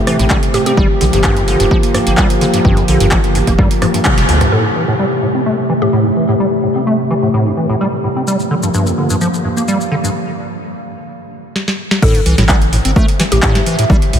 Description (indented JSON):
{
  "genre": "acid house",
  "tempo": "128 BPM",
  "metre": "4/4",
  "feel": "straight",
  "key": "A phrygian",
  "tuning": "A4 = 440 Hz",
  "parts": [
    { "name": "warm analog pad", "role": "sustained chords", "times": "0.0-10.1 s", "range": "C3 to G4", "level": "-19 LUFS", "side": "equal", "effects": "chorus, sidechain pumping" },
    { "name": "acid bass, square", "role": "riff", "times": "0.0-14.2 s", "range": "G1 to C4", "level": "-17 LUFS", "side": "equal", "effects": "tube saturation, diffuse ambient delay" },
    { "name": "warbly tape-like pad", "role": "texture", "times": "0.0-14.2 s", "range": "A3 to F5", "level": "-22 LUFS", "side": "right 1 dB", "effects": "chorus, built-in reverb, sidechain pumping" },
    { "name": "booming analog drum machine", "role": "drums", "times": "0.1-4.5, 11.6-14.2 s", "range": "crash cymbal, handclaps, hi-hat, rim click, snare drum, toms", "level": "-18 LUFS", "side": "equal", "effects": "none" },
    { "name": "saturated sub bass", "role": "bass", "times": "0.2-4.5, 12.0-14.2 s", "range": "F1 to G2", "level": "-16 LUFS", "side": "equal", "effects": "sidechain pumping" },
    { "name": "electronic kick drum", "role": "drums", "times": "0.3-4.2, 12.0-14.0 s", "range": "none", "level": "-14 LUFS", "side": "equal", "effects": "overdrive" },
    { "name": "mallet-like synth pluck", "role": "melody", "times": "0.5-0.7, 4.5-6.5, 12.0-14.0 s", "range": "G4 to A4", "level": "-23 LUFS", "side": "left 1 dB", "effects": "chorus, cassette tape, diffuse ambient delay" },
    { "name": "maracas", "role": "percussion", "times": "8.3-10.1 s", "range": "none", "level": "-26 LUFS", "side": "left 4 dB", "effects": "none" }
  ],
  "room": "wet cathedral reverb, RT60 5.0 s",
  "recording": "dreamy mix soaked in reverb",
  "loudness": "-11 LUFS",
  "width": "side -9 dB against mid",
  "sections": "0.0-4.5 A section; 4.5-12.0 B section; 12.0-14.2 C section",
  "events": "drum fill 3.8-4.5, 11.6-12.0; band accent 4.1; filter sweep on acid bass 4.5-12.0; break 10.2-12.0; drop 12.0-14.2",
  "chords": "0.0 Am7; 0.8 Gm7; 4.5 Am7; 8.3 Gm7; 12.0 Am7",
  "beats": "0.31 | 0.78 1.24 1.71 2.18 | 2.65 3.12 3.59 4.06 | 4.53 4.99 5.46 5.93 | 6.40 6.87 7.34 7.81 | 8.28 8.74 9.21 9.68 | 10.15 10.62 11.09 11.56 | 12.03 12.49 12.96 13.43 | 13.90"
}